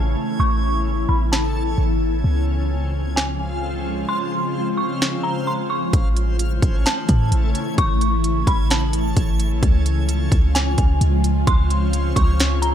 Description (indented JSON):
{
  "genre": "hip hop, atmospheric cloud-rap",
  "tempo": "130 BPM",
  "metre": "4/4",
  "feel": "half-time",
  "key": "unclear",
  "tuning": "A4 = 440 Hz",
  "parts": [
    { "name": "dark detuned synth bell", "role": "melody", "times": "0.0-12.7 s", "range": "Ab5 to C#6", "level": "-26 LUFS", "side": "right 1 dB", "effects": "chorus, low-pass filter, ping-pong delay" },
    { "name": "ethereal airy pad", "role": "sustained chords", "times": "0.0-12.7 s", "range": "C#3 to F4", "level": "-24 LUFS", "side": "left 1 dB", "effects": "ensemble chorus, built-in reverb, sidechain pumping, low-pass filter" },
    { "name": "clean 808-style bass", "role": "bass", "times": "0.0-12.7 s", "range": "G#1 to A2", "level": "-20 LUFS", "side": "equal", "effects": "none" },
    { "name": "backwards swelling texture", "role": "texture", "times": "0.0-12.7 s", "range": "C4 to G#6", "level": "-31 LUFS", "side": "left 1 dB", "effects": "built-in reverb" },
    { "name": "trap drum kit", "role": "drums", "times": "1.3-12.7 s", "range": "hi-hat, kick drum, snare drum", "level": "-20 LUFS", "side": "equal", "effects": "none" }
  ],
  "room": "little or no reverb",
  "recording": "none",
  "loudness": "-17 LUFS",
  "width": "side -10 dB against mid",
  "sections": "0.0-5.9 A section; 5.9-12.7 B section",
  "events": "filter sweep 0.0-5.9; kick muted 4.1-5.9",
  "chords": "0.0 Amaj7; 2.2 Dbmaj7; 5.9 Amaj7; 9.6 Dbmaj7",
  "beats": "| 0.40 0.86 1.32 1.78 | 2.24 2.70 3.17 3.63 | 4.09 4.55 5.01 5.47 | 5.93 6.40 6.86 7.32 | 7.78 8.24 8.70 9.16 | 9.63 10.09 10.55 11.01 | 11.47 11.93 12.40"
}